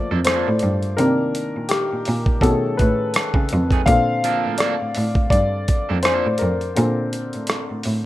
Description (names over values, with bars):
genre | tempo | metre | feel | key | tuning
R&B, neo-soul | 83 BPM | 4/4 | swing 57% on 16ths | Bb major | A4 = 440 Hz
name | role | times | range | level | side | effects
clear concert grand piano | accompaniment | 0.0-8.1 s | D3 to F5 | -21 LUFS | left 3 dB | none
electric guitar at the edge of break-up | second line | 0.1-6.3 s | D#3 to A4 | -26 LUFS | right 10 dB | none
clear cello | bass | 0.1-8.1 s | F2 to C#3 | -22 LUFS | right 1 dB | none
dusty soul sampler-style drum kit | drums | 0.2-8.0 s | hi-hat, kick drum, rim click | -21 LUFS | right 1 dB | none
room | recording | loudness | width
little or no reverb | rough home demo mix | -17 LUFS | side -15 dB against mid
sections
0.0-8.1 A section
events
grand piano solo 0.0-8.1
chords
0.0 Gm9; 1.0 Cm7; 2.4 B13; 3.9 Bbmaj7